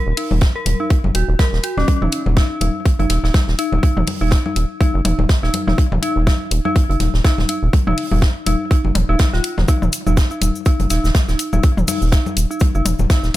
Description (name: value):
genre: minimal techno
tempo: 123 BPM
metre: 4/4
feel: swing 57% on 16ths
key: Eb minor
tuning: A4 = 440 Hz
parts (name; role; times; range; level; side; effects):
- rubbery square bass; bass; 0.1-13.3 s; Eb1 to Gb1; -18 LUFS; equal; sidechain pumping
- dark detuned synth bell; riff; 0.2-13.4 s; Db4 to Bb4; -23 LUFS; equal; chorus, tremolo, sidechain pumping, low-pass filter, ping-pong delay
- electronic hi-hat; drums; 0.2-13.4 s; none; -21 LUFS; left 4 dB; small room reverb
- natural country drum kit; drums; 0.2-13.4 s; hi-hat, snare drum; -29 LUFS; right 2 dB; sidechain pumping on hats, high-pass filter on hats, small room reverb, high-pass filter on snare, high-pass filter on room
- electronic congas and toms; percussion; 0.3-13.4 s; none; -25 LUFS; left 4 dB; small room reverb, ping-pong delay
- electronic kick drum; drums; 0.4-13.2 s; none; -14 LUFS; equal; small room reverb
- cabasa; percussion; 9.7-13.3 s; none; -29 LUFS; left 4 dB; none
room: small room ambience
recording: none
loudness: -15 LUFS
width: side -15 dB against mid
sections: 0.0-13.4 A section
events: none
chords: none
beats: 0.42 0.90 1.39 | 1.88 2.37 2.86 3.34 | 3.83 4.32 4.81 5.29 | 5.78 6.27 6.76 7.25 | 7.73 8.22 8.71 9.20 | 9.69 10.17 10.66 11.15 | 11.64 12.12 12.61 13.10